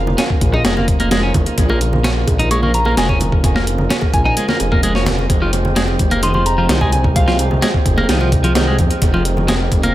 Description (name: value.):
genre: breakbeat, breaks.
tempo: 129 BPM.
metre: 4/4.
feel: straight.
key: Bb dorian.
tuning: A4 = 440 Hz.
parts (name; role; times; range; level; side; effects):
percussive tonewheel organ; sustained chords; 0.0-9.9 s; Db3 to C5; -23 LUFS; right 1 dB; overdrive, stopped rotary speaker, sidechain pumping.
detuned saw bass; bass; 0.0-9.9 s; F1 to F2; -18 LUFS; equal; tube saturation.
congas and bongos; percussion; 0.1-9.8 s; none; -26 LUFS; right 2 dB; none.
twelve-string electric guitar; riff; 0.2-9.9 s; Eb3 to Eb4; -20 LUFS; equal; analog delay.
breakbeat sampler-style drum kit; drums; 0.2-9.9 s; hi-hat, kick drum, snare drum; -17 LUFS; equal; analog delay.
soft synth bell; melody; 2.5-7.4 s; F5 to Db6; -24 LUFS; equal; chorus, telephone sound, analog delay.
room: light reverb, digital ambience.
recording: echo-heavy mix.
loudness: -13 LUFS.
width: side -14 dB against mid.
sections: 0.0-9.9 A section.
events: none.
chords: 0.0 Bbm; 5.3 Fmadd9.